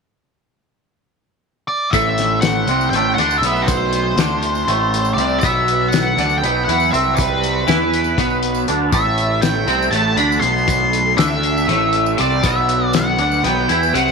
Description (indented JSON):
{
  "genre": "psychedelic rock",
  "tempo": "240 BPM (eighths)",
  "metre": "7/8",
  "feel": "straight",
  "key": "A dorian",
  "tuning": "A4 = 440 Hz",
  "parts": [
    { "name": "octave-fuzz lead guitar", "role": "melody", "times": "1.7-14.1 s", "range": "B4 to C6", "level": "-19 LUFS", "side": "left 1 dB", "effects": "wah, distortion, tape echo" },
    { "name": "dark symphonic string section", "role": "sustained chords", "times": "1.9-14.1 s", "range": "E3 to C6", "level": "-29 LUFS", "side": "right 15 dB", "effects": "none" },
    { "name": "twangy electric guitar", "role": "riff", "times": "1.9-14.1 s", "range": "A2 to E4", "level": "-18 LUFS", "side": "right 1 dB", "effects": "phaser, double-tracked left and right" },
    { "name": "fuzz picked electric bass", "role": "bass", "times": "1.9-14.1 s", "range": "A1 to E2", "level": "-22 LUFS", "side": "right 1 dB", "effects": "overdrive" },
    { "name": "cloth-damped thuddy drum kit", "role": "drums", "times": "1.9-14.1 s", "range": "hi-hat, kick drum, snare drum", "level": "-22 LUFS", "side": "left 5 dB", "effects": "none" },
    { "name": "tambourine", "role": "percussion", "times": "1.9-14.1 s", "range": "none", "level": "-36 LUFS", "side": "right 20 dB", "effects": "none" }
  ],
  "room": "studio reverb",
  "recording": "1960s-style stereo",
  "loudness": "-14 LUFS",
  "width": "side -4 dB against mid",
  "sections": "0.2-1.9 A section; 1.9-14.1 B section",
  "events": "none",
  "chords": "0.2 N.C.; 1.9 Am; 5.4 B5; 8.9 Am; 12.4 B5"
}